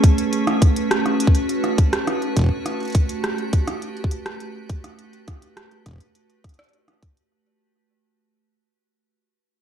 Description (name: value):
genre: IDM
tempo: 103 BPM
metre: 4/4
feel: straight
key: unclear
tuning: A4 = 437 Hz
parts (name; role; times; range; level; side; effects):
- icy glass pad; sustained chords; 0.0-7.3 s; A3 to B4; -23 LUFS; right 2 dB; chorus, built-in reverb, sidechain pumping
- electronic kick drum; drums; 0.0-7.1 s; none; -16 LUFS; equal; none
- glitchy drum kit; drums; 0.0-7.3 s; hi-hat, rim click; -26 LUFS; right 1 dB; none
room: light reverb, digital ambience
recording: dark, warm production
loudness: -18 LUFS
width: side -9 dB against mid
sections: 0.0-7.3 A section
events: fade-out 0.0-7.3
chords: 0.0 Aadd9; 2.7 Gmaj9